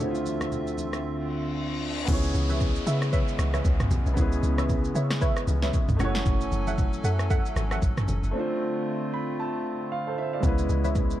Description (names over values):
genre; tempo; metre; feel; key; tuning
amapiano; 115 BPM; 4/4; swing 58% on 16ths; unclear; A4 = 440 Hz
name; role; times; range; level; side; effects
warm concert grand piano; accompaniment; 0.0-11.2 s; D3 to B5; -30 LUFS; right 1 dB; none
hollow soft pad; sustained chords; 0.0-11.2 s; D2 to G#5; -34 LUFS; left 1 dB; chorus
deep house drum kit; drums; 0.0-11.2 s; crash cymbal, kick drum, rim click, shaker, snare drum, toms; -27 LUFS; equal; none
congas; percussion; 0.0-11.1 s; none; -36 LUFS; left 1 dB; none
reverse cymbal and downlifter; sound effects; 1.3-6.3 s; none; -38 LUFS; left 3 dB; none
deep log drum bass; bass; 2.1-11.2 s; F#1 to C#3; -26 LUFS; equal; none
deep mellow chord stab; stabs; 2.5-10.9 s; A4 to F#5; -34 LUFS; right 2 dB; chorus, ping-pong delay
room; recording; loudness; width
digital ambience; dark, warm production; -24 LUFS; side -13 dB against mid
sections
0.0-2.1 A section; 2.1-11.2 B section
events
drums muted 1.0-2.1; reverse cymbal 1.3-2.1; drop 2.1-11.2; break 8.3-10.4; grand piano fill 8.9-10.4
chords
0.0 Dm7; 2.1 C#m7; 6.0 F#m7; 8.3 Dm7; 10.4 C#m7